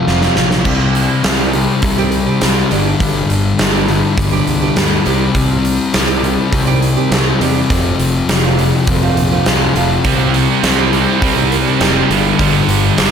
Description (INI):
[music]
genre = quiet-loud alternative rock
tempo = 102 BPM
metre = 4/4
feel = straight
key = C dorian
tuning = A4 = 442 Hz
[part]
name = picked steel-string acoustic guitar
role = arpeggios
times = 0.0-13.0 s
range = Eb3 to G4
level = -22 LUFS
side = right 9 dB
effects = tape echo
[part]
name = thick fuzz guitar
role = riff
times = 0.0-13.1 s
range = F2 to C4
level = -15 LUFS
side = left 4 dB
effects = distortion
[part]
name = fuzz fingered electric bass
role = bass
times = 0.1-13.1 s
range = F1 to E2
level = -20 LUFS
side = right 1 dB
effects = overdrive
[part]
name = huge arena drum kit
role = drums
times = 0.1-13.1 s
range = crash cymbal, hi-hat, kick drum, snare drum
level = -16 LUFS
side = right 2 dB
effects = none
[part]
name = distorted electric guitar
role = riff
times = 10.0-13.1 s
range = G2 to C4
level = -16 LUFS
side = right 12 dB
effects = overdrive
[sound]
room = moderate lush hall reverb, RT60 1.6 s, small room ambience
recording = big arena sound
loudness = -11 LUFS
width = side -7 dB against mid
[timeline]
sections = 0.7-13.1 A section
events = drum fill 0.1-0.7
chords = 0.0 F; 0.7 Cm; 2.7 G; 5.1 Cm; 7.7 F; 10.1 Cm; 12.1 G